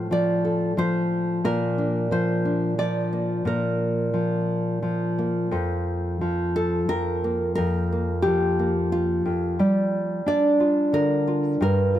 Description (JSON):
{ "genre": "folk, solo fingerstyle acoustic guitar", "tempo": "89 BPM", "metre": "3/4", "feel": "rubato", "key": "unclear", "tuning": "A4 = 439 Hz", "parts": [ { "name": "nylon-string guitar", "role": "solo", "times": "0.0-12.0 s", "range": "F2 to D5", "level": "-21 LUFS", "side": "equal", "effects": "none" } ], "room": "moderate plate reverb, RT60 3.0 s", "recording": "none", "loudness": "-21 LUFS", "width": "side -12 dB against mid", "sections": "0.0-5.5 A section; 5.5-12.0 B section", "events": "none", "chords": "0.0 F/A; 1.4 Bb; 5.5 Fsus4; 9.6 Gm7", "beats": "0.10 0.77 | 1.44 2.11 2.78 | 3.45 4.13 4.82 | 5.51 6.21 6.89 | 7.58 8.25 8.93 | 9.60 10.28 10.95 | 11.62" }